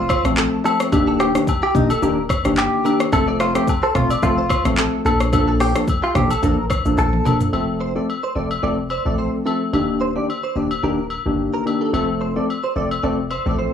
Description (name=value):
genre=afrobeats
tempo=109 BPM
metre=4/4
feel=swing 55% on 16ths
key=F mixolydian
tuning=A4 = 440 Hz
part: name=direct-recorded clean electric guitar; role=melody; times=0.0-7.4 s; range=Eb4 to A4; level=-22 LUFS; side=equal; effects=analog delay
part: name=direct-recorded clean electric guitar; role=riff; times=0.0-13.7 s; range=G4 to D5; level=-27 LUFS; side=right 5 dB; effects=ensemble chorus, analog delay
part: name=punchy sub bass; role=bass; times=0.0-13.7 s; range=Eb1 to Bb1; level=-25 LUFS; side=equal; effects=none
part: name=afro-pop drum kit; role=drums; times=0.1-7.5 s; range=handclaps, hi-hat, kick drum, rim click, shaker, toms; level=-21 LUFS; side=equal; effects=none
part: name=agogo bells and woodblock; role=percussion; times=0.1-13.4 s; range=none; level=-27 LUFS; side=left 6 dB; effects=none
part: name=warm analog keys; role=accompaniment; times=0.2-13.7 s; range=Eb3 to A4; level=-20 LUFS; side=left 2 dB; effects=chorus
room=light reverb, digital ambience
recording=dry, gritty hardware recording, cassette tape, small room ambience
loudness=-17 LUFS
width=side -8 dB against mid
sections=0.0-7.5 A section; 7.5-13.7 B section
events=drum fill 7.0-7.5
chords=0.0 F; 0.9 Ebmaj7; 3.1 F; 5.1 Bbmaj7; 7.5 F; 9.7 Ebmaj7; 11.9 F